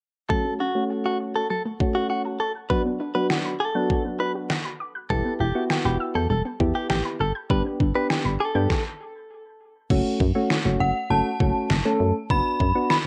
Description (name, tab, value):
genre	synth-pop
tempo	100 BPM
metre	4/4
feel	straight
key	unclear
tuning	A4 = 440 Hz
part	direct-recorded clean electric guitar	second line	0.3-8.8 s	F#4 to B4	-30 LUFS	equal	warbly pitch drift, plate reverb, analog delay
part	soft electric-piano-like synth keys	accompaniment	0.3-12.9 s	F#3 to A4	-29 LUFS	equal	chorus, low-pass filter
part	soft round pluck	arpeggios	0.3-8.6 s	F#3 to G6	-34 LUFS	equal	chorus, low-pass filter, analog delay
part	pop drum kit	drums	0.3-13.0 s	crash cymbal, kick drum, snare drum	-28 LUFS	equal	overdrive
part	solid FM bass	bass	5.1-12.7 s	E1 to G2	-27 LUFS	equal	none
part	synth chime	melody	10.8-13.1 s	F#5 to B5	-27 LUFS	equal	ensemble chorus, plate reverb
room	moderate small room reverb, RT60 0.5 s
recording	cassette tape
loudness	-24 LUFS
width	mono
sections	0.3-9.9 A section; 9.9-13.1 B section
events	filter sweep 0.3-9.9; stop 8.7-9.9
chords	0.3 F#m; 2.7 Bm/F#; 5.1 Em; 7.5 G; 9.9 F#m; 12.3 Bm/F#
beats	| 0.30 0.90 1.50 2.10 | 2.70 3.30 3.90 4.50 | 5.10 5.70 6.30 6.90 | 7.50 8.10 8.70 9.30 | 9.90 10.50 11.10 11.70 | 12.30 12.90